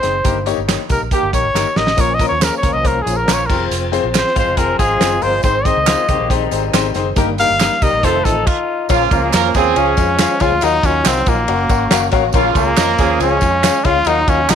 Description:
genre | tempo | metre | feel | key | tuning
uptempo 1960s-style soul | 139 BPM | 4/4 | straight | Bb minor from 8.9 s | A4 = 440 Hz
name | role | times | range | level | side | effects
warm trumpet | melody | 0.0-14.6 s | Bb3 to F5 | -17 LUFS | left 1 dB | none
clear grand piano | accompaniment | 0.0-14.6 s | G2 to Ab5 | -20 LUFS | left 12 dB | none
vintage muted fingered electric bass | bass | 0.0-14.6 s | F1 to F2 | -22 LUFS | right 2 dB | none
warm soul drum kit | drums | 0.0-14.6 s | crash cymbal, hi-hat, kick drum, ride cymbal, snare drum | -19 LUFS | right 2 dB | none
tambourine and handclaps | percussion | 0.0-14.6 s | none | -25 LUFS | right 16 dB | none
warm horn section | second line | 0.3-1.4, 7.2-13.4 s | Db3 to Bb4 | -19 LUFS | right 14 dB | none
tonewheel organ | sustained chords | 2.0-14.6 s | Eb3 to Gb4 | -25 LUFS | right 2 dB | overdrive, chorus vibrato, fast rotary speaker
electric guitar through a small old amp | riff | 4.4-8.9 s | G3 to Ab4 | -24 LUFS | left 14 dB | none
room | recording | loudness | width
light reverb, small room ambience | 1960s-style stereo with parts hard left and right | -13 LUFS | side -8 dB against mid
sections
0.0-8.9 A section; 8.9-14.6 B section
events
trumpet solo 0.0-8.9; band accent 0.3-2.0, 7.2-8.9; drum fill 1.6-2.0; stop 8.5-8.9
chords
0.3 Eb/G; 2.0 Bbm; 3.5 Fm; 5.4 Ab; 7.2 Eb/G; 8.0 F7; 8.9 Bbm; 9.8 Db; 10.6 Ebmadd9; 11.5 Gb; 12.3 Bbm; 13.2 Db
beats
| 0.26 0.69 1.12 1.55 | 1.99 2.42 2.85 3.28 | 3.71 4.15 4.58 5.01 | 5.44 5.87 6.31 6.74 | 7.17 7.60 8.03 8.46 | 8.89 9.33 9.76 10.19 | 10.62 11.05 11.48 11.91 | 12.34 12.77 13.20 13.63 | 14.06 14.49

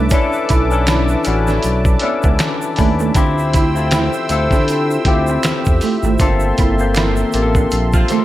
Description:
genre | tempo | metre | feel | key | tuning
R&B, neo-soul | 79 BPM | 4/4 | swing 57% on 16ths | unclear | A4 = 440 Hz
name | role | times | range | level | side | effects
electric guitar through a small old amp | second line | 0.0-8.2 s | A3 to E4 | -22 LUFS | right 7 dB | wide subtle chorus
barky tine electric piano | accompaniment | 0.0-8.2 s | Bb3 to C5 | -18 LUFS | left 4 dB | overdrive, phaser
warm analog pad | sustained chords | 0.0-8.2 s | Bb3 to E6 | -23 LUFS | right 1 dB | chorus
smooth gliding synth bass | bass | 0.0-8.0 s | G1 to D3 | -18 LUFS | equal | none
dusty soul sampler-style drum kit | drums | 0.1-8.2 s | finger snaps, hi-hat, kick drum, snare drum | -17 LUFS | equal | none
egg shaker and finger snaps | percussion | 0.1-8.2 s | none | -32 LUFS | right 5 dB | none
clear saxophone section | stabs | 7.9-8.1 s | D3 to F4 | -24 LUFS | right 1 dB | none
room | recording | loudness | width
light reverb | none | -13 LUFS | side -14 dB against mid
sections
0.0-8.2 A section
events
band accent 6.2-8.2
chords
0.0 Bm11; 3.2 Dm11; 6.2 Gm11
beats
| 0.12 0.88 1.64 2.40 | 3.16 3.92 4.68 5.44 | 6.20 6.96 7.71

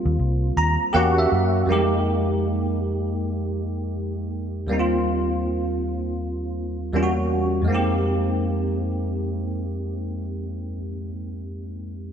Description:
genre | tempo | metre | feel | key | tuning
R&B | 80 BPM | 4/4 | swing 63% on 16ths | F minor | A4 = 441 Hz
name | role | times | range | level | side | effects
barky tine electric piano | accompaniment | 0.0-12.1 s | Eb2 to Bb5 | -22 LUFS | equal | ensemble chorus
vintage muted fingered electric bass | bass | 0.1-1.6 s | C2 to Gb2 | -21 LUFS | left 1 dB | none
room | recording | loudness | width
moderate plate reverb, RT60 2.9 s | bright 1980s-style digital production | -21 LUFS | side -8 dB against mid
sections
0.0-7.7 A section; 7.7-10.7 B section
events
tine electric piano fill 0.2-1.7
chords
0.0 Eb69; 0.9 Edim7; 1.7 Fm11; 4.7 Eb69; 6.9 Edim7; 7.7 Fm11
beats
0.17 0.93 | 1.68 2.42 3.17 3.92 | 4.67 5.42 6.17 6.92 | 7.67 8.43 9.18 9.93

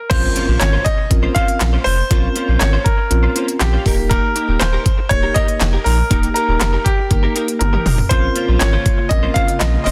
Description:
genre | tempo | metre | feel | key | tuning
dance-pop | 120 BPM | 4/4 | straight | Bb dorian | A4 = 440 Hz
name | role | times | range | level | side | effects
bright concert grand piano | melody | 0.0-9.9 s | G4 to F5 | -23 LUFS | equal | tape echo
mellow tine electric piano | accompaniment | 0.1-9.8 s | Bb3 to Bb4 | -26 LUFS | equal | sidechain pumping
direct-recorded clean electric guitar | riff | 0.1-9.9 s | Bb3 to C5 | -28 LUFS | equal | ensemble chorus
warm sub bass | bass | 0.1-9.9 s | Eb1 to Bb1 | -19 LUFS | equal | sidechain pumping
pop drum kit | drums | 0.1-9.9 s | crash cymbal, handclaps, hi-hat, kick drum, snare drum, toms | -20 LUFS | equal | none
impact | sound effects | 0.1-2.1 s | none | -30 LUFS | equal | none
airy breathy pad | sustained chords | 8.4-9.9 s | Db3 to F4 | -29 LUFS | equal | chorus, sidechain pumping
room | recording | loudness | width
little or no reverb | dense, heavily limited modern master | -16 LUFS | mono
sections
0.1-9.9 A section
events
impact 0.1-2.1; drum fill 7.6-8.1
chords
0.1 Bbmadd9; 3.9 Eb; 8.1 Bbmadd9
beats
| 0.11 0.61 1.11 1.61 | 2.11 2.61 3.11 3.61 | 4.11 4.61 5.11 5.61 | 6.11 6.61 7.11 7.61 | 8.11 8.61 9.11 9.61

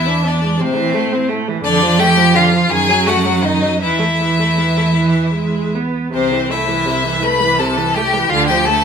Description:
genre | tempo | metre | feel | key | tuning
classical, slow romantic movement for string quartet | 50-58 BPM (dotted quarters) | 6/8 | rubato | A minor | A4 = 438 Hz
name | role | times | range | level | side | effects
rich violin | melody | 0.0-8.8 s | C5 to B5 | -18 LUFS | left 4 dB | none
rich violin | second line | 0.0-8.8 s | C4 to B4 | -18 LUFS | left 3 dB | none
rich viola | accompaniment | 0.0-8.8 s | C3 to D4 | -19 LUFS | right 3 dB | none
dark cello | bass | 0.0-8.8 s | C2 to A2 | -18 LUFS | right 3 dB | none
room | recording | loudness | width
wet stone room reverb, RT60 1.1 s | minimal, uncompressed stereo recording | -13 LUFS | side -7 dB against mid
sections
0.0-8.8 A section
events
none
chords
0.0 E7; 0.6 Am; 1.6 Dm/F; 2.7 F#m69; 3.8 Esus4; 5.0 E; 6.1 Am/C; 8.3 Bm7b5/D (rootless)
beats
0.60 | 1.65 2.70 | 3.82 4.97 | 6.14 7.23 | 8.31

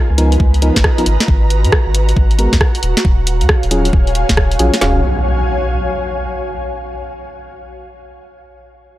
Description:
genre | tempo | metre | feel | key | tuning
UK garage, two-step garage | 136 BPM | 4/4 | swing 64% on 16ths | Eb minor | A4 = 441 Hz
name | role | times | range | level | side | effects
ethereal airy pad | texture | 0.0-6.5 s | F4 to Bb5 | -22 LUFS | equal | ensemble chorus, built-in reverb, sidechain pumping
saturated sub bass | bass | 0.1-5.0 s | Eb1 to Ab2 | -14 LUFS | equal | sidechain pumping
FM electric piano | stabs | 0.2-5.0 s | F3 to F5 | -19 LUFS | equal | chorus, cassette tape, low-pass filter, tape echo
punchy analog drum machine | drums | 0.2-4.8 s | hi-hat, rim click, snare drum | -17 LUFS | equal | none
garage drum kit | drums | 0.4-4.9 s | kick drum, snare drum | -14 LUFS | equal | overdrive
impact | sound effects | 4.8-6.6 s | none | -20 LUFS | equal | none
room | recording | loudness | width
light reverb, digital ambience | dry, gritty hardware recording | -12 LUFS | side -15 dB against mid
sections
0.0-4.8 A section; 4.8-6.6 B section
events
filter sweep on FM electric piano 0.0-4.8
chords
0.0 Db13; 1.1 Abm9; 2.8 Ebm11; 4.8 Ebm11 (rootless)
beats
0.40 0.84 | 1.28 1.73 2.17 2.61 | 3.05 3.49 3.93 4.37 | 4.81 5.25 5.70 6.14

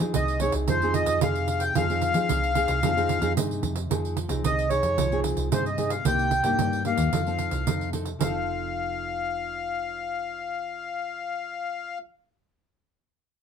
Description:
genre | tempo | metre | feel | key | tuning
samba and choro | 112 BPM | 4/4 | straight | F minor | A4 = 439 Hz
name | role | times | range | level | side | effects
nylon-string guitar | accompaniment | 0.0-12.1 s | G2 to A4 | -30 LUFS | left 1 dB | none
hollow-body short-scale fingered electric bass | bass | 0.0-12.0 s | F1 to F3 | -29 LUFS | right 1 dB | none
accordion | melody | 0.1-12.0 s | C5 to G5 | -27 LUFS | left 2 dB | none
pandeiro | percussion | 0.1-8.3 s | none | -29 LUFS | right 8 dB | none
room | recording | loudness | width
moderate small room reverb, RT60 0.5 s | band playing live in one room | -24 LUFS | side -7 dB against mid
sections
0.0-3.9 A section; 3.9-8.2 B section; 8.2-12.5 C section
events
none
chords
0.0 Fm7; 6.1 Cm7; 7.1 F7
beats
0.15 0.69 1.22 | 1.76 2.30 2.83 3.37 | 3.91 4.44 4.98 5.52 | 6.05 6.59 7.13 7.67 | 8.20 8.74 9.28 9.81 | 10.35 10.89 11.43 11.96

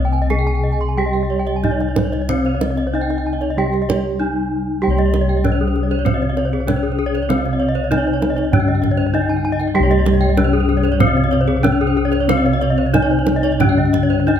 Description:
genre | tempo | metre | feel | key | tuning
Balinese gamelan | 96 BPM | 4/4 | uneven beats | C pelog | A4 = 440 Hz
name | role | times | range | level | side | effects
gamelan-type bronze metallophone | melody | 0.0-14.4 s | C4 to Ab4 | -19 LUFS | left 2 dB | none
gamelan-type bronze metallophone | accompaniment | 0.0-14.4 s | C3 to G3 | -24 LUFS | right 4 dB | none
gamelan-type bronze metallophone | arpeggios | 0.0-14.4 s | Ab4 to C6 | -26 LUFS | right 5 dB | none
gamelan-type bossed gongs | bass | 0.0-14.4 s | C2 to G4 | -20 LUFS | left 2 dB | none
gamelan-type bronze metallophone | arpeggios | 0.1-14.4 s | Ab4 to Ab5 | -25 LUFS | left 3 dB | none
kendang | percussion | 0.1-14.4 s | none | -23 LUFS | right 5 dB | none
room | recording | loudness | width
light reverb | close, detailed microphones | -15 LUFS | side -9 dB against mid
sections
0.0-4.8 A section; 4.8-14.4 B section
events
none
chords
none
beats
0.30 0.98 1.64 | 2.30 2.94 3.58 4.21 | 4.83 5.45 6.06 6.68 | 7.29 7.91 8.53 9.14 | 9.76 10.38 11.01 11.64 | 12.29 12.94 13.61 14.28

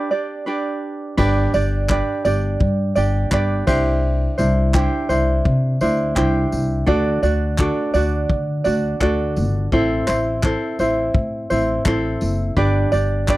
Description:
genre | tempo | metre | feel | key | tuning
acoustic pop | 84 BPM | 4/4 | swing 55% on 16ths | G major | A4 = 440 Hz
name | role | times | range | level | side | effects
tenor ukulele | accompaniment | 0.0-13.4 s | C4 to D5 | -20 LUFS | right 1 dB | none
upright bass | bass | 1.2-13.4 s | F#1 to D3 | -20 LUFS | left 1 dB | none
vintage brush drum kit | drums | 1.2-13.4 s | crash cymbal, handclaps, kick drum, tambourine | -22 LUFS | left 1 dB | none
room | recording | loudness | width
studio reverb | dry, close 1970s-style studio recording | -17 LUFS | side -17 dB against mid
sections
0.0-1.2 A section; 1.2-13.4 A section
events
break 0.0-1.2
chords
0.0 G; 3.7 Cadd9; 6.9 D; 9.7 Am; 12.6 G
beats
0.48 | 1.19 1.90 2.61 3.32 | 4.03 4.75 5.46 6.17 | 6.88 7.59 8.30 9.01 | 9.72 10.43 11.15 11.86 | 12.57 13.28

